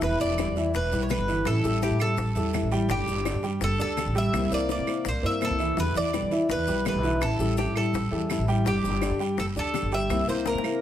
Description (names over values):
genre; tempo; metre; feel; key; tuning
latin, Cuban son and guajira; 167 BPM; 4/4; straight; unclear; A4 = 439 Hz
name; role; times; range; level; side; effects
Cuban tres; melody; 0.0-10.8 s; G4 to E5; -29 LUFS; equal; none
nylon-string guitar; accompaniment; 0.0-10.8 s; B2 to G4; -32 LUFS; left 5 dB; none
dark grand piano; arpeggios; 0.0-10.8 s; E3 to G5; -29 LUFS; right 2 dB; none
upright bass; bass; 0.0-10.8 s; E1 to E3; -29 LUFS; equal; none
bongos; percussion; 0.0-10.7 s; none; -36 LUFS; left 10 dB; none
guiro; percussion; 0.0-10.8 s; none; -42 LUFS; right 7 dB; none
maracas; percussion; 0.0-10.8 s; none; -44 LUFS; left 6 dB; none
claves; percussion; 0.4-10.8 s; none; -39 LUFS; right 9 dB; none
room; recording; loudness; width
moderate studio reverb, RT60 0.7 s; none; -23 LUFS; side -11 dB against mid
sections
0.0-10.8 A section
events
drum fill 10.5-10.8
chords
0.0 Em7; 1.5 A7; 2.9 Gsus2; 4.3 C7; 5.8 Em7; 7.2 A7; 8.7 Gsus2; 10.1 C7